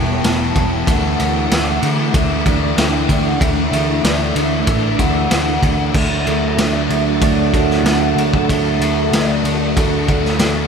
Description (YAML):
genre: rock, shoegaze and dream pop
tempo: 95 BPM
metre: 4/4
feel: straight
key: D major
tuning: A4 = 439 Hz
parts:
  - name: hollow clarinet-like synth lead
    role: melody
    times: 0.0-10.7 s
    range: A4 to A5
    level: -24 LUFS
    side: equal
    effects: chorus, diffuse ambient delay
  - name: phased string machine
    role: sustained chords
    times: 0.0-10.7 s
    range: G3 to A5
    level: -24 LUFS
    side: equal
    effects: ensemble chorus, phaser
  - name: fingerpicked twelve-string acoustic guitar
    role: arpeggios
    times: 0.0-10.7 s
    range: E3 to F#4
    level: -25 LUFS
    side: right 6 dB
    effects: lush chorus, diffuse ambient delay
  - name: electric guitar through a small old amp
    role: riff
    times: 0.0-10.7 s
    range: D3 to E4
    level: -23 LUFS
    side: right 7 dB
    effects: reverse reverb
  - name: thick fuzz guitar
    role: riff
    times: 0.0-10.7 s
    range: E2 to D4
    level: -22 LUFS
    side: left 7 dB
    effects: distortion, ensemble chorus
  - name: vintage muted picked electric bass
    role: bass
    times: 0.0-10.7 s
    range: E1 to D3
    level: -21 LUFS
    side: equal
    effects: none
  - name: raw garage drum kit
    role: drums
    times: 0.2-10.5 s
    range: crash cymbal, kick drum, ride cymbal, snare drum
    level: -19 LUFS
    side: equal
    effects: none
room: wet cathedral reverb, RT60 6.3 s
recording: dreamy mix soaked in reverb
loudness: -14 LUFS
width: side -6 dB against mid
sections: 0.0-5.9 A section; 5.9-10.7 B section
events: none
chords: 0.0 Em; 0.9 Dsus2; 5.9 D